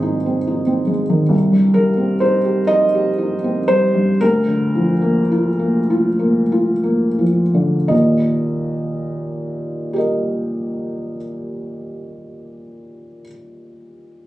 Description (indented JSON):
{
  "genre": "neoclassical minimalist piano",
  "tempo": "28-47 BPM (dotted quarters)",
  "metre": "6/8",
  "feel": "rubato",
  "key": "Eb major",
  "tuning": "A4 = 438 Hz",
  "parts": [
    { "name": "felt-muted upright piano", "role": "solo", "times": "0.0-14.2 s", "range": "Ab1 to Eb5", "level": "-16 LUFS", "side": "equal", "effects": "none" }
  ],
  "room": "light reverb",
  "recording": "recorded on a phone in the room, studio reverb",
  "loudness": "-15 LUFS",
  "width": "side -15 dB against mid",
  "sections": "0.0-7.9 A section; 7.9-12.0 B section",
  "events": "slowing down 0.0-7.9",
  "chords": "0.0 Ab; 1.3 Cm; 4.2 Bb/D; 7.9 Eb",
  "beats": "0.03 | 1.33 2.71 | 4.22 5.90 | 7.91 9.95"
}